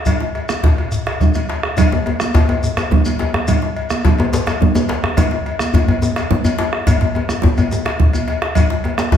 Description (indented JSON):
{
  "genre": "west african traditional, West African drum ensemble",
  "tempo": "142 BPM (dotted quarters)",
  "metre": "12/8",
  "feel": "straight",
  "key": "none",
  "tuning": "none",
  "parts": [
    { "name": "bombo", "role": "percussion", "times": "0.1-9.2 s", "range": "none", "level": "-17 LUFS", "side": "right 1 dB", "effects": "none" },
    { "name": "congas", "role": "percussion", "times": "0.1-9.2 s", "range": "none", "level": "-22 LUFS", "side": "right 4 dB", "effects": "none" },
    { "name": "cowbell", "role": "percussion", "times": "0.1-9.2 s", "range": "none", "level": "-25 LUFS", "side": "left 5 dB", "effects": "none" },
    { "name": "djembe", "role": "percussion", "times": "0.1-9.2 s", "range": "none", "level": "-24 LUFS", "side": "left 4 dB", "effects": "none" },
    { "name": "shekere", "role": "percussion", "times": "0.1-9.2 s", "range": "none", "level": "-27 LUFS", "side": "left 2 dB", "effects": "none" },
    { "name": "djembe", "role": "percussion", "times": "1.9-9.2 s", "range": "none", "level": "-19 LUFS", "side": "left 2 dB", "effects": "none" }
  ],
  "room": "wet large studio reverb, RT60 1.2 s",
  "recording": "band playing live in one room",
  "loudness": "-14 LUFS",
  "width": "side -9 dB against mid",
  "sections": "0.0-1.8 A section; 1.8-9.2 B section",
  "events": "drum fill 8.0-8.6",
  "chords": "none",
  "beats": "| 0.07 0.50 0.92 1.35 | 1.78 2.20 2.63 3.06 | 3.48 3.90 4.33 4.75 | 5.18 5.60 6.02 6.45 | 6.87 7.29 7.71 8.13 | 8.56 8.98"
}